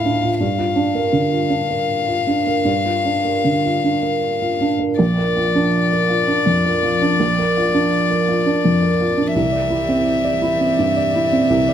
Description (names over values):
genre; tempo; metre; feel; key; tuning
neoclassical piano and strings; 76-84 BPM; 3/4; rubato; unclear; A4 = 440 Hz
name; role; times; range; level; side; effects
rich violin; melody; 0.0-11.7 s; D5 to F5; -20 LUFS; left 5 dB; none
warm upright piano; accompaniment; 0.0-11.7 s; Bb1 to D5; -17 LUFS; right 2 dB; none
warm chamber string section; sustained chords; 5.0-11.7 s; E3 to D5; -28 LUFS; right 1 dB; none
room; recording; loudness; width
moderate studio reverb, RT60 0.8 s; none; -15 LUFS; side -9 dB against mid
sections
0.0-5.0 A section; 5.0-11.7 A section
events
none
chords
0.4 Gm7; 5.0 Bb; 9.3 Cadd9